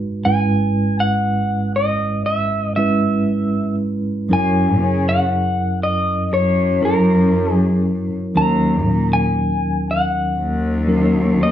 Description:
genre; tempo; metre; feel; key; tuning
folk; 59 BPM; 4/4; straight; unclear; A4 = 435 Hz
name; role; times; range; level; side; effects
tine electric piano; accompaniment; 0.0-11.5 s; F#1 to B4; -18 LUFS; equal; medium tremolo
electric guitar through a small old amp; melody; 0.2-11.5 s; A#4 to A#5; -20 LUFS; left 1 dB; harmonic tremolo
warm cello; bass; 4.3-11.5 s; D#2 to C#3; -20 LUFS; equal; none
room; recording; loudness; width
light reverb; close, detailed microphones; -15 LUFS; side -10 dB against mid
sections
0.0-11.5 A section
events
none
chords
0.3 C#m7/G#; 4.3 F#7; 8.4 D#m7

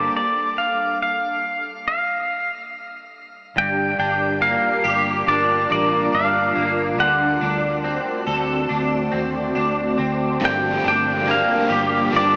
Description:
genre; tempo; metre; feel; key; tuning
dream pop; 70 BPM; 4/4; straight; G minor; A4 = 441 Hz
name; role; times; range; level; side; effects
pedal steel guitar; melody; 0.0-12.4 s; D5 to G5; -23 LUFS; equal; low-pass filter, shimmer reverb, digital delay
ethereal airy pad; sustained chords; 0.0-12.4 s; D3 to Bb4; -28 LUFS; equal; ensemble chorus, built-in reverb, low-pass filter, shimmer reverb
electric guitar at the edge of break-up; arpeggios; 0.0-12.4 s; G2 to A4; -25 LUFS; equal; ensemble chorus, low-pass filter, shimmer reverb, digital delay
vintage muted fingered electric bass; bass; 0.0-12.4 s; G1 to Eb2; -33 LUFS; equal; none
overdriven electric guitar; accompaniment; 10.4-12.4 s; G2 to G4; -27 LUFS; equal; tremolo, lush chorus, shimmer reverb
room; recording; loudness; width
wet huge ambient reverb, RT60 4.8 s; small speaker sound; -20 LUFS; mono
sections
0.0-3.6 A section; 3.6-12.4 B section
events
filter sweep 0.0-3.6; stop 0.1-3.6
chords
0.1 N.C.; 3.6 Gm7; 7.0 D7; 10.4 Gm7

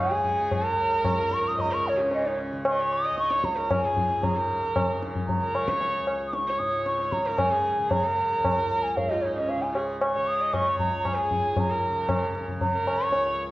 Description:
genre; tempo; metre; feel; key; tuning
indian classical, Hindustani; 114 BPM; 7/4; straight; unclear; A4 = 437 Hz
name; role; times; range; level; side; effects
breathy mellow bansuri; melody; 0.0-13.4 s; Db5 to Eb6; -26 LUFS; equal; none
rich sarangi; second line; 0.0-13.5 s; Db4 to Eb5; -31 LUFS; right 1 dB; none
tanpura; drone; 0.0-13.5 s; Db2 to Db3; -36 LUFS; equal; none
tabla; percussion; 0.2-13.3 s; none; -28 LUFS; left 1 dB; none
room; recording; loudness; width
moderate recital hall reverb, RT60 1.6 s; worn, warbling old tape, cassette tape, warbly pitch drift; -23 LUFS; side -17 dB against mid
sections
0.0-4.2 A section; 4.2-13.5 B section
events
none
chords
none

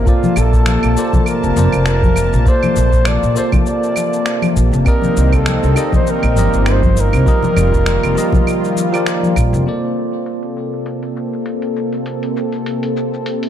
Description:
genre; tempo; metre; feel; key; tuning
sunset chillout; 100 BPM; 4/4; swing 56% on 16ths; Bb major; A4 = 440 Hz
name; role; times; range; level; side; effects
mellow flugelhorn; melody; 0.0-9.1 s; F4 to D5; -20 LUFS; right 1 dB; digital delay
bell-like tine electric piano; accompaniment; 0.0-13.5 s; F3 to A5; -21 LUFS; equal; auto-pan, low-pass filter, digital delay
lush unison pad; sustained chords; 0.0-13.5 s; C3 to A5; -21 LUFS; left 1 dB; chorus
upright bass; bass; 0.0-9.6 s; F1 to C2; -15 LUFS; equal; none
dusty soul sampler-style drum kit; drums; 0.1-13.5 s; claves, finger snaps, hi-hat, shaker; -24 LUFS; right 1 dB; low-pass filter on perc, low-pass filter on snare, low-pass filter on hats
electronic kick drum; drums; 0.1-9.5 s; none; -15 LUFS; equal; none
congas; percussion; 0.2-9.6 s; none; -21 LUFS; left 5 dB; none
room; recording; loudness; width
light reverb, studio ambience; dark, warm production; -13 LUFS; side -10 dB against mid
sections
0.0-9.7 A section; 9.7-13.5 B section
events
filter sweep on drum 9.7-13.5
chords
0.1 Bbmaj9; 4.9 Cm9; 7.3 F9sus4; 9.7 Bbmaj9

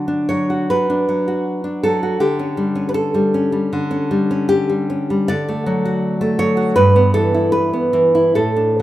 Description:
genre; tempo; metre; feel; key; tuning
romantic piece for solo classical guitar; 70-83 BPM; 4/4; rubato; D major; A4 = 440 Hz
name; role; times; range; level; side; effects
nylon-string guitar; solo; 0.0-8.8 s; G2 to D5; -15 LUFS; equal; none
room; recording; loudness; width
moderate recital hall reverb, RT60 1.4 s; minimal, uncompressed stereo recording; -15 LUFS; side -14 dB against mid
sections
0.0-8.8 A section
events
none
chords
0.0 D; 2.2 A7/D; 5.3 D; 6.8 Em/G

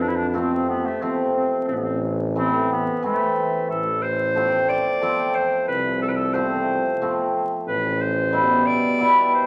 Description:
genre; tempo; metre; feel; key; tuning
klezmer; 90 BPM; 3/4; straight; unclear; A4 = 439 Hz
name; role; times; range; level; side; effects
bright clarinet; melody; 0.0-9.5 s; A3 to D5; -27 LUFS; equal; none
warm tuba; bass; 0.0-8.9 s; A1 to F2; -29 LUFS; equal; none
cimbalom; accompaniment; 0.3-9.5 s; B2 to E4; -24 LUFS; equal; none
room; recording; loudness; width
wet large studio reverb, RT60 1.4 s; vinyl crackle; -22 LUFS; mono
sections
0.0-3.7 A section; 3.7-9.5 B section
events
none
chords
0.0 F; 1.7 Am; 3.7 F/A; 7.7 Em/A

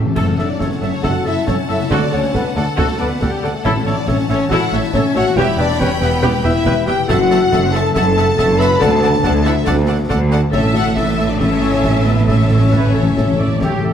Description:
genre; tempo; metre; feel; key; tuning
cinematic, heroic adventure film score; 139 BPM; 4/4; straight; D major; A4 = 440 Hz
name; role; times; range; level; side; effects
warm studio violin section; melody; 0.0-13.9 s; G4 to B5; -25 LUFS; left 3 dB; none
mellow large flute ensemble; second line; 0.0-13.9 s; G4 to B5; -26 LUFS; left 2 dB; none
rich symphonic viola section; accompaniment; 0.0-13.9 s; E4 to E5; -24 LUFS; equal; none
dark French horn section; sustained chords; 0.0-13.9 s; G3 to B4; -20 LUFS; left 3 dB; none
concert harp; arpeggios; 0.0-13.9 s; E2 to A5; -24 LUFS; left 10 dB; none
rich symphonic cello section; bass; 0.0-13.8 s; D2 to A2; -20 LUFS; right 2 dB; none
rich symphonic double bass section; bass; 0.0-13.8 s; E1 to D2; -21 LUFS; right 4 dB; none
timpani; percussion; 0.0-4.3, 8.8-13.9 s; A2 to D3; -23 LUFS; left 1 dB; none
bright symphonic violin section; second line; 0.2-13.9 s; G4 to B5; -28 LUFS; left 1 dB; none
dark cor anglais; second line; 0.2-13.9 s; E5 to G5; -29 LUFS; right 3 dB; none
mellow clarinet; second line; 0.2-13.9 s; A4 to C#5; -28 LUFS; left 1 dB; none
clash cymbals, concert bass drum and concert snare drum; drums; 0.2-13.8 s; none; -24 LUFS; equal; none
clear trumpet section; stabs; 13.6-13.9 s; G4; -26 LUFS; right 2 dB; none
room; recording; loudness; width
moderate scoring stage reverb, RT60 1.8 s; none; -13 LUFS; side -8 dB against mid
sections
0.2-13.9 A section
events
timpani fill 0.0, 10.5-13.9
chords
0.2 F#m7; 1.9 D; 3.6 A; 5.4 Em; 7.1 F#m7; 8.8 D; 10.5 A

